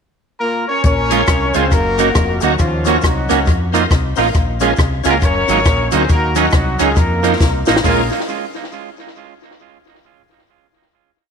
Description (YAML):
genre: ska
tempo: 137 BPM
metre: 4/4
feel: swing 61% on 8ths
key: Bb minor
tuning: A4 = 440 Hz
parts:
  - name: clear horn section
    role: melody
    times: 0.4-8.1 s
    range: F3 to Db5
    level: -18 LUFS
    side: left 1 dB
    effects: none
  - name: fingered electric bass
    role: bass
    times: 0.8-8.1 s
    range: F1 to F2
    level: -20 LUFS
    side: left 1 dB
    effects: none
  - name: compact cocktail drum kit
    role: drums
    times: 0.8-8.0 s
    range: hi-hat, kick drum, rim click, snare drum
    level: -17 LUFS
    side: left 1 dB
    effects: tape echo
  - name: cabasa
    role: percussion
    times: 0.8-8.1 s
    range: none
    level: -35 LUFS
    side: left 12 dB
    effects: tape echo
  - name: semi-hollow electric guitar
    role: accompaniment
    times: 1.1-8.0 s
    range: F3 to Gb4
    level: -18 LUFS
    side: right 8 dB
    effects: tape echo
  - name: bright tonewheel organ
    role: stabs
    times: 1.1-8.0 s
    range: C4 to Bb4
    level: -23 LUFS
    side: left 10 dB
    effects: chorus vibrato, slow rotary speaker
room: moderate echo chamber reverb, RT60 1.6 s, small room ambience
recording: 1960s-style stereo with parts hard left and right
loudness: -12 LUFS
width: side -6 dB against mid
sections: 0.0-0.8 pickup bar; 0.8-7.8 head; 7.8-9.6 final chord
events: drum fill 7.4-7.8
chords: 0.0 Bb5; 0.8 Bbm7; 1.7 Gb6; 2.6 Ebm7; 3.5 F7sus4; 4.3 Bbm7; 5.2 Gb6; 6.1 Ebm7; 7.0 F7sus4; 7.8 Bbm7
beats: 0.41 | 0.85 1.28 1.72 2.16 | 2.60 3.04 3.47 3.91 | 4.35 4.78 5.22 5.66 | 6.09 6.53 6.96 7.40 | 7.84